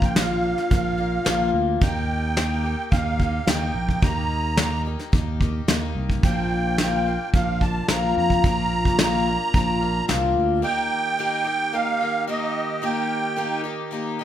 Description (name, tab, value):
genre	indie folk with a building arrangement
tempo	109 BPM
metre	4/4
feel	straight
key	unclear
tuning	A4 = 440 Hz
part	musette accordion	melody	0.0-13.6 s	Eb5 to Bb5	-25 LUFS	right 3 dB	none
part	picked twelve-string acoustic guitar	accompaniment	0.0-14.2 s	Bb2 to G4	-26 LUFS	left 4 dB	none
part	fingered electric bass	bass	0.0-10.6 s	Bb1 to F2	-26 LUFS	right 1 dB	none
part	soft brush drum kit	drums	0.0-10.2 s	hi-hat, kick drum, snare drum	-22 LUFS	equal	none
part	warm brass ensemble	sustained chords	10.7-14.2 s	Eb3 to G4	-33 LUFS	right 3 dB	none
room	moderate large studio reverb, RT60 1.2 s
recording	band playing live in one room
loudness	-20 LUFS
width	side -11 dB against mid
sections	0.0-10.6 A section; 10.6-14.2 A section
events	none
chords	0.0 Bb; 1.8 Eb; 6.2 Bb; 10.6 Eb